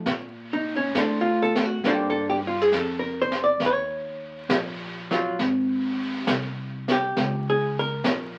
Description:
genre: jazz ballad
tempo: 68 BPM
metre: 4/4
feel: swing 68% on 8ths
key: unclear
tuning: A4 = 440 Hz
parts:
  - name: archtop guitar, miked and amplified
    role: accompaniment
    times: 0.0-8.4 s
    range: Gb3 to D5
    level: -26 LUFS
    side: equal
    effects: none
  - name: upright bass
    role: bass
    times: 0.1-8.4 s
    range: Ab1 to Bb2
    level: -32 LUFS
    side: equal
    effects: none
  - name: jazz brush drum kit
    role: drums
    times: 0.1-8.4 s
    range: brushed snare drum, hi-hat, snare drum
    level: -30 LUFS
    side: equal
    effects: none
room: wet studio reverb, RT60 0.6 s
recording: very old 78 rpm record, vinyl crackle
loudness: -25 LUFS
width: mono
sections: 0.1-8.4 A section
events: none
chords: 0.1 Bbmaj9; 3.6 Ebm7; 5.4 Ab; 7.2 Db5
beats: | 0.07 0.96 1.84 2.73 | 3.62 4.51 5.39 6.28 | 7.17 8.05

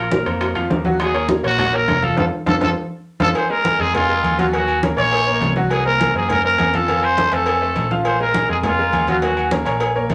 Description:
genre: latin, salsa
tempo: 204 BPM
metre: 4/4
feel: straight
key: Bb minor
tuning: A4 = 440 Hz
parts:
  - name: growling trumpet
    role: melody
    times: 0.0-9.5 s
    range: F4 to Db5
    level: -21 LUFS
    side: equal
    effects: none
  - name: bright upright piano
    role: accompaniment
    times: 0.0-10.1 s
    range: F3 to Gb5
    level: -25 LUFS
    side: equal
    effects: none
  - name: picked electric bass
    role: bass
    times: 0.0-10.1 s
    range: F1 to Gb2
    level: -28 LUFS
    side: equal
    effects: none
  - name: bongos and cowbell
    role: percussion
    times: 0.1-10.1 s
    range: none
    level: -28 LUFS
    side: equal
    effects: none
  - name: congas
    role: percussion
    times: 0.1-10.1 s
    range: none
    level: -27 LUFS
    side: equal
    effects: none
  - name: timbales and agogo bells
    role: percussion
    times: 0.3-10.1 s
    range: none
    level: -27 LUFS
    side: equal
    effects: none
room: wet studio reverb, RT60 0.5 s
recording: none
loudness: -18 LUFS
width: mono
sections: 0.0-3.4 A section; 3.4-10.1 B section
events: drum fill 2.2-3.4; band accent 2.2-3.4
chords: 0.0 Bbsus2; 1.0 Ebm7; 2.2 F; 3.4 Bb5; 4.5 Ebm7; 5.7 Ab13; 6.9 F; 8.1 Bb5; 9.2 Ebm7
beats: 0.12 0.41 0.71 | 1.00 1.29 1.59 1.88 | 2.18 2.47 2.77 3.06 | 3.35 3.65 3.94 4.24 | 4.53 4.83 5.12 5.42 | 5.71 6.00 6.30 6.59 | 6.88 7.17 7.47 7.76 | 8.05 8.35 8.64 8.93 | 9.22 9.52 9.81 10.10

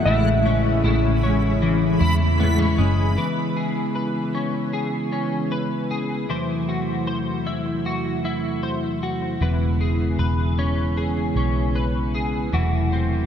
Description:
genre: dream pop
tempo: 77 BPM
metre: 4/4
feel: straight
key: E major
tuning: A4 = 441 Hz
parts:
  - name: clean lap steel guitar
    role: melody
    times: 0.0-2.4 s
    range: E5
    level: -27 LUFS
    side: equal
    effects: shimmer reverb, tape echo
  - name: mellow electric guitar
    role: accompaniment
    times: 0.0-3.2 s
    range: A2 to E4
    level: -26 LUFS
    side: left 1 dB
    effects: tremolo, ensemble chorus, shimmer reverb
  - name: mellow tonewheel organ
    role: sustained chords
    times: 0.0-13.3 s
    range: E2 to E4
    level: -26 LUFS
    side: right 2 dB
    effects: slow rotary speaker, shimmer reverb
  - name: twelve-string electric guitar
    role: arpeggios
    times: 0.0-13.3 s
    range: A2 to C5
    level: -25 LUFS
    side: left 4 dB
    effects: analog chorus, shimmer reverb, tape echo
  - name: vintage muted picked electric bass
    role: bass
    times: 0.0-3.2, 9.4-13.3 s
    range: E1 to E2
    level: -21 LUFS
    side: equal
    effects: none
  - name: backwards swelling texture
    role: texture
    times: 0.7-2.4 s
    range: B5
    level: -32 LUFS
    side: right 1 dB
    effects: built-in reverb, shimmer reverb, tape echo
room: moderate plate reverb, RT60 2.5 s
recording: dark, warm production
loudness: -20 LUFS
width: side -8 dB against mid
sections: 0.0-3.2 A section; 3.2-13.3 B section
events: none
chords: 0.1 Amaj7; 3.2 E6; 6.3 Am6/E; 9.4 E6; 12.5 Am6/E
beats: | 0.06 0.84 1.62 2.40 | 3.18 3.96 4.74 5.52 | 6.30 7.08 7.86 8.63 | 9.41 10.19 10.97 11.75 | 12.53

